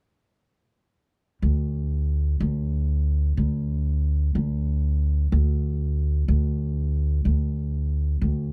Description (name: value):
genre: klezmer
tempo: free time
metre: none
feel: none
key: unclear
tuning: A4 = 437 Hz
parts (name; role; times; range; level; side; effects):
- upright bass; bass; 1.4-8.5 s; D2; -24 LUFS; equal; none
room: little or no reverb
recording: none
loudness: -24 LUFS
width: mono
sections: 1.4-8.5 A section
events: none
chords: none